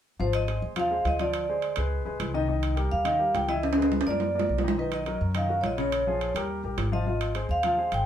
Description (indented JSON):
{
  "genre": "Afro-Cuban jazz",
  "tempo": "210 BPM",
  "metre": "4/4",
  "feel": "straight",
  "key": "Ab major",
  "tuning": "A4 = 441 Hz",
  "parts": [
    { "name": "vibraphone with medium mallets", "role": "melody", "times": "0.2-8.1 s", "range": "B4 to G5", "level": "-28 LUFS", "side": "right 1 dB", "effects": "none" },
    { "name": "warm grand piano", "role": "accompaniment", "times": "0.2-8.0 s", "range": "Db3 to F5", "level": "-32 LUFS", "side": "left 3 dB", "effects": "none" },
    { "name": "upright bass", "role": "bass", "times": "0.2-8.1 s", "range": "Ab1 to Gb2", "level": "-30 LUFS", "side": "equal", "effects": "none" },
    { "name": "timbales", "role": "percussion", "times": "0.3-8.1 s", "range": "none", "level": "-30 LUFS", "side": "right 1 dB", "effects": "none" }
  ],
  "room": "moderate studio ambience, RT60 0.5 s",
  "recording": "band playing live in one room",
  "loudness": "-24 LUFS",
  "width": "side -10 dB against mid",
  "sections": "0.2-8.1 A section",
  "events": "drum fill 3.6-4.8",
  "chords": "0.2 Ab6; 1.3 Dm7b5; 1.9 Dbsus2; 2.5 Cm7; 3.6 Dbm7; 4.2 Gbaug; 4.8 Bmaj7; 5.9 Bbm7; 6.5 Ebadd9; 7.1 Ab6",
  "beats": "| 0.20 0.48 0.77 1.05 | 1.34 1.63 1.91 2.20 | 2.48 2.77 3.06 3.34 | 3.63 3.92 4.20 4.49 | 4.77 5.06 5.35 5.63 | 5.92 6.21 6.49 6.78 | 7.07 7.35 7.64 7.92"
}